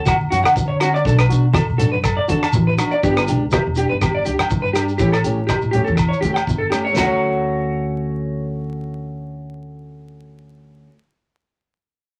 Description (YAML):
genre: highlife guitar band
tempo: 122 BPM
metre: 4/4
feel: swing 54% on 16ths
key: D major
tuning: A4 = 443 Hz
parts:
  - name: upright bass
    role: bass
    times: 0.0-10.9 s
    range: E1 to D3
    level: -24 LUFS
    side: equal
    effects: none
  - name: electric guitar through a small old amp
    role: arpeggios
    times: 0.1-10.9 s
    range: F#4 to A5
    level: -23 LUFS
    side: equal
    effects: none
  - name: damped 70s drum kit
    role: drums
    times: 0.1-7.1 s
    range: hi-hat, kick drum, rim click, snare drum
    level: -27 LUFS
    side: equal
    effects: none
  - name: agogo bells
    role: percussion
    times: 0.1-7.1 s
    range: none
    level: -30 LUFS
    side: equal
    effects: none
  - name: congas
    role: percussion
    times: 0.1-7.2 s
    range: none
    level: -26 LUFS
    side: equal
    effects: none
  - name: shekere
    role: percussion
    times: 0.1-7.2 s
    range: none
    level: -28 LUFS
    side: equal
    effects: none
  - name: fingerpicked steel-string acoustic guitar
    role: accompaniment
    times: 0.3-11.0 s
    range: E3 to G4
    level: -26 LUFS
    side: equal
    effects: none
room: moderate small room reverb, RT60 0.5 s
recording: vinyl crackle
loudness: -18 LUFS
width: mono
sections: 0.0-7.0 A section; 7.0-10.9 B section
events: none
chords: 0.0 Dmaj7; 1.1 Bm7; 3.0 G; 5.0 A7; 7.0 Dmaj7